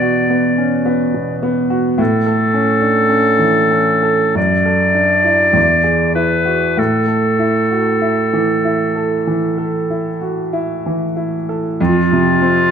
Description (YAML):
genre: classical, romantic duo for clarinet and grand piano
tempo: 47-54 BPM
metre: 4/4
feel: rubato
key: A major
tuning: A4 = 443 Hz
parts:
  - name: bright clarinet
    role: melody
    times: 0.0-12.7 s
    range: F4 to D5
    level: -15 LUFS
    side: equal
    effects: none
  - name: clear grand piano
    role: accompaniment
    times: 0.0-12.7 s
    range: E2 to A4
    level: -16 LUFS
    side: right 1 dB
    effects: none
room: moderate recital hall reverb, RT60 1.5 s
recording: close, detailed microphones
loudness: -13 LUFS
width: side -7 dB against mid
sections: 0.0-11.8 A section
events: none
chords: 0.0 Esus2; 2.0 A; 4.4 D/F#; 5.6 E7; 6.8 A5; 11.8 F5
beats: 0.86 | 2.00 3.12 4.36 5.56 | 6.78 8.03 9.29 10.53 | 11.79